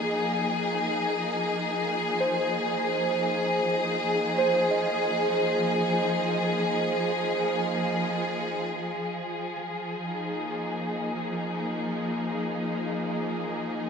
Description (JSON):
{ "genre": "ambient", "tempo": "free time", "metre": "none", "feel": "none", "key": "unclear", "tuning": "A4 = 440 Hz", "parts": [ { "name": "rich studio string section", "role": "sustained chords", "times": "0.0-13.9 s", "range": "F3 to Ab4", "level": "-26 LUFS", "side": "left 1 dB", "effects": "low-pass filter" }, { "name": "muted felt-like synth keys", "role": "arpeggios", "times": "2.2-8.8 s", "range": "C5 to Eb5", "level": "-29 LUFS", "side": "right 4 dB", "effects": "chorus, analog delay" } ], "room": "wet lush hall reverb, RT60 2.8 s", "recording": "dreamy mix soaked in reverb", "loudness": "-25 LUFS", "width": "side -6 dB against mid", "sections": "0.0-8.7 A section; 8.7-13.9 B section", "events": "filter sweep on string section 8.7-13.9", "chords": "0.0 Fm7; 8.7 Bb5" }